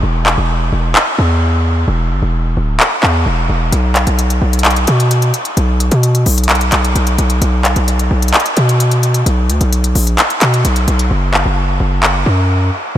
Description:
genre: hip hop, trap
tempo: 130 BPM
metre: 4/4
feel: half-time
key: B harmonic minor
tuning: A4 = 440 Hz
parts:
  - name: distorted 808-style bass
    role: bass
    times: 0.0-13.0 s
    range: D1 to B2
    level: -13 LUFS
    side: equal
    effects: distortion
  - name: trap drum kit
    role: drums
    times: 0.3-12.1 s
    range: handclaps, hi-hat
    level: -15 LUFS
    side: equal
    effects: none
room: moderate huge ambient reverb, RT60 7.9 s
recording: dreamy mix soaked in reverb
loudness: -11 LUFS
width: side -12 dB against mid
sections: 0.0-13.0 A section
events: break 0.0-3.7; hi-hats muted 11.1-13.0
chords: none

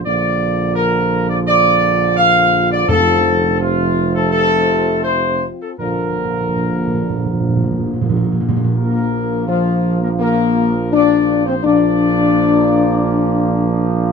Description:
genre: classical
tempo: 84 BPM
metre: 4/4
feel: straight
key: Bb major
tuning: A4 = 440 Hz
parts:
  - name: dark trumpet section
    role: melody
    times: 0.0-14.1 s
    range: F4 to F5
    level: -17 LUFS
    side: left 1 dB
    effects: none
  - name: mellow French horn section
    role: sustained chords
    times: 0.0-14.1 s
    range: F3 to F4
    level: -19 LUFS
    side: left 6 dB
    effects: none
  - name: mellow trombone section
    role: sustained chords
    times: 0.0-14.1 s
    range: C3 to Bb3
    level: -24 LUFS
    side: right 2 dB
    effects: none
  - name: dark tuba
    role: bass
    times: 0.1-14.1 s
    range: F1 to Bb1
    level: -20 LUFS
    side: right 5 dB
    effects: none
  - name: timpani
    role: percussion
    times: 2.9-8.7 s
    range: F2 to Bb2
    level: -20 LUFS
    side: right 2 dB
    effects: none
room: light reverb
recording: close, detailed microphones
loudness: -13 LUFS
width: side -5 dB against mid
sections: 0.0-8.8 A section; 8.8-14.1 A section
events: timpani fill 5.8-8.8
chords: 0.0 Bb; 2.9 F; 5.8 Bb

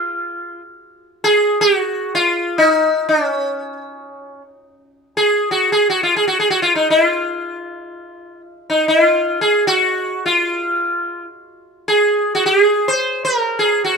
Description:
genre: indian classical, Hindustani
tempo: free time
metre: none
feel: none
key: unclear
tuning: A4 = 439 Hz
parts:
  - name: sitar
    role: solo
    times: 0.0-13.9 s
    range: Db4 to C5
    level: -14 LUFS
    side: equal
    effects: none
room: light reverb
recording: minimal, uncompressed stereo recording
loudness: -14 LUFS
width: side -5 dB against mid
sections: 0.0-4.9 A section; 4.9-14.0 A section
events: none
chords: none

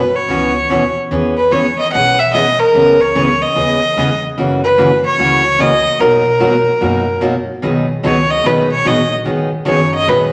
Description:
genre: country, western swing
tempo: 147 BPM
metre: 4/4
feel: swing 66% on 8ths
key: B major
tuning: A4 = 439 Hz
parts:
  - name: rich fiddle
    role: melody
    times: 0.0-10.3 s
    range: A#4 to F#5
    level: -15 LUFS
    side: equal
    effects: none
  - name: upright bass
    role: bass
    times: 0.0-10.3 s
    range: F#1 to F#2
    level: -28 LUFS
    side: equal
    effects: none
  - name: picked steel-string acoustic guitar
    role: accompaniment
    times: 0.3-10.3 s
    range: B2 to G#4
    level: -18 LUFS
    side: equal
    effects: none
room: wet large studio reverb, RT60 1.4 s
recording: none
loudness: -13 LUFS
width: mono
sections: 0.0-7.6 A section; 7.6-10.3 B section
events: fiddle solo 7.6-10.3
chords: 0.0 F#7sus4; 1.1 E6; 2.7 C#m7; 4.4 F#6; 6.0 Bmaj7; 7.6 B6; 9.3 G#m9

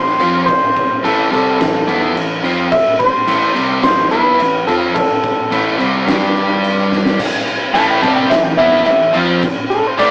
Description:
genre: quiet-loud alternative rock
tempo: 107 BPM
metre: 4/4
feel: straight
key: A minor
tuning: A4 = 440 Hz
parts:
  - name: electric guitar through a small old amp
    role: melody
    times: 0.0-10.1 s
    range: A4 to A5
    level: -17 LUFS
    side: equal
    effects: none
  - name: distorted electric guitar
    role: riff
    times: 0.0-10.1 s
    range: A2 to G4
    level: -23 LUFS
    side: equal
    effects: overdrive
  - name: overdriven semi-hollow guitar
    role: riff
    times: 0.0-10.1 s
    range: A2 to G4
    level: -22 LUFS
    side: equal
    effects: none
  - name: growling picked electric bass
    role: bass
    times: 0.0-10.1 s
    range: A1 to G2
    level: -26 LUFS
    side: equal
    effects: overdrive
  - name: oversized low-tuned drum kit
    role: drums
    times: 0.1-10.1 s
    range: crash cymbal, kick drum, snare drum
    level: -21 LUFS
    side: equal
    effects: none
  - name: tight distorted guitar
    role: riff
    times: 7.7-10.1 s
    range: A2 to F4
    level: -21 LUFS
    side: equal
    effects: distortion
room: moderate studio reverb, RT60 0.6 s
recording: rough rehearsal-room recording, tube saturation, small speaker sound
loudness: -14 LUFS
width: mono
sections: 0.0-7.2 A section; 7.2-10.1 B section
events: drum fill 6.9; clean electric guitar solo 7.2-10.1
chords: 0.0 Am; 6.1 G5; 7.2 Am

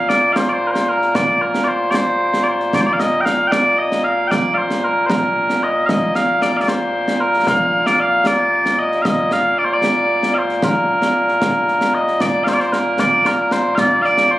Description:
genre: scottish traditional, Scottish pipe music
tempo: 76 BPM (dotted quarters)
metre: 6/8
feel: straight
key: Bb major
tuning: A4 = 440 Hz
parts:
  - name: mellow small bagpipes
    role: melody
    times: 0.0-14.4 s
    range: Bb2 to G5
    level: -15 LUFS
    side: equal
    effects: none
  - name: concert snare drum and concert bass drum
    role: drums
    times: 0.1-14.3 s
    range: none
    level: -22 LUFS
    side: equal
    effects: none
room: light reverb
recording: recorded on a phone in the room, club reverb, compression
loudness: -14 LUFS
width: side -16 dB against mid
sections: 0.0-12.2 A section; 12.2-14.4 B section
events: none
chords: none

